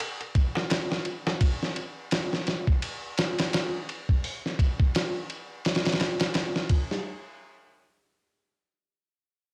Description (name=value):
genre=trip hop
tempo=85 BPM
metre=4/4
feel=swing 58% on 16ths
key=none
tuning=none
part: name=dusty soul sampler-style drum kit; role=drums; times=0.0-7.0 s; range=hi-hat, kick drum, ride cymbal, snare drum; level=-28 LUFS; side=equal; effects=vintage 12-bit sampler grit
part: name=darbuka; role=percussion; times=0.0-1.4 s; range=none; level=-40 LUFS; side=equal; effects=none
room=little or no reverb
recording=home recording on cassette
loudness=-28 LUFS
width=mono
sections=0.0-7.1 A section; 7.1-9.5 B section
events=none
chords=none